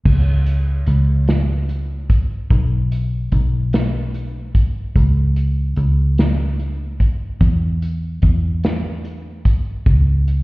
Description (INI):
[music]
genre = six-eight pop ballad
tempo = 49 BPM (dotted quarters)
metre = 6/8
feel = straight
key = C# minor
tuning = A4 = 440 Hz
[part]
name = vintage muted fingered electric bass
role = bass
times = 0.1-10.4 s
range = B1 to E2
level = -17 LUFS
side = equal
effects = none
[part]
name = unplugged drum kit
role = drums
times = 0.1-10.4 s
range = crash cymbal, hi-hat, kick drum, snare drum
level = -18 LUFS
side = equal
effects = none
[sound]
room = little or no reverb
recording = heard muffled through a wall, stone room reverb, EQ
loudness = -15 LUFS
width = side -21 dB against mid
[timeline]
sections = 0.1-10.4 A section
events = none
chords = none